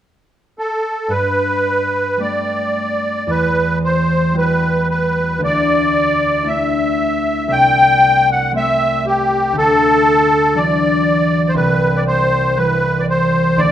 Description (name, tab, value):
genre	celtic folk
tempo	58 BPM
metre	4/4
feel	uneven beats, rubato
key	G major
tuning	A4 = 440 Hz
part	musette accordion	melody	0.6-13.7 s	G4 to G5	-14 LUFS	equal	none
part	concert harp	accompaniment	1.1-13.7 s	C2 to F#4	-18 LUFS	equal	none
room	moderate recital hall reverb, RT60 1.4 s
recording	minimal, uncompressed stereo recording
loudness	-13 LUFS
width	side -10 dB against mid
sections	0.0-1.1 A section; 1.1-13.7 B section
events	none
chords	0.0 N.C.; 1.1 Gadd9; 3.3 Emadd9; 5.4 Dsus2; 7.5 Am7/C; 9.5 Dadd9; 11.5 C